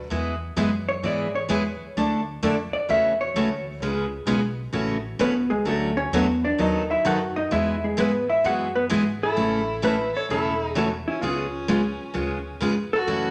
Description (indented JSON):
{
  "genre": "country, western swing",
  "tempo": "130 BPM",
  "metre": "4/4",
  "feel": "swing 67% on 8ths",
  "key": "A major",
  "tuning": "A4 = 440 Hz",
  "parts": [
    { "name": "vintage hollow-body jazz guitar", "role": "melody", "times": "0.0-13.3 s", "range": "G#3 to F#5", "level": "-27 LUFS", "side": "equal", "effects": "none" },
    { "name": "upright bass", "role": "bass", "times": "0.0-13.3 s", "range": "E1 to G#2", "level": "-37 LUFS", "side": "equal", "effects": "none" },
    { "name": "picked steel-string acoustic guitar", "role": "accompaniment", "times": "0.1-13.3 s", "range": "C#3 to A4", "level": "-27 LUFS", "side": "equal", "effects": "none" },
    { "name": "clear fiddle", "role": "second line", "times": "9.2-13.3 s", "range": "C#4 to A4", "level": "-32 LUFS", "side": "equal", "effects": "none" }
  ],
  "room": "moderate large studio reverb, RT60 1.2 s",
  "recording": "none",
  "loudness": "-24 LUFS",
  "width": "mono",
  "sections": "0.0-9.4 A section; 9.4-13.3 B section",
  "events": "hollow-body jazz guitar solo 0.0-9.4",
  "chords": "0.1 E; 2.0 Dsus2; 2.9 A6; 3.8 C#7; 4.7 F#m7; 5.7 Dmaj7; 6.6 B7/D#; 7.5 E; 9.4 A; 11.2 C#7"
}